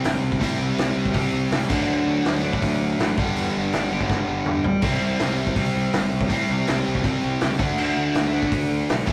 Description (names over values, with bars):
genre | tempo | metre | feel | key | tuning
punk rock | 163 BPM | 4/4 | straight | unclear | A4 = 440 Hz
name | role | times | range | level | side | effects
biting overdriven guitar | riff | 0.0-9.1 s | G2 to D4 | -28 LUFS | equal | none
cranked stack guitar | riff | 0.0-9.1 s | G2 to F#4 | -28 LUFS | equal | overdrive
fuzz picked electric bass | bass | 0.0-9.1 s | G1 to A2 | -32 LUFS | equal | overdrive
loose indie drum kit | drums | 0.0-9.1 s | crash cymbal, hi-hat, kick drum, snare drum, toms | -28 LUFS | equal | none
room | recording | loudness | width
light reverb | rough rehearsal-room recording, warm saturation | -22 LUFS | mono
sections
0.0-9.1 A section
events
drum fill 4.1-4.8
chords
0.0 C; 1.7 D; 3.2 G; 4.8 C; 7.6 D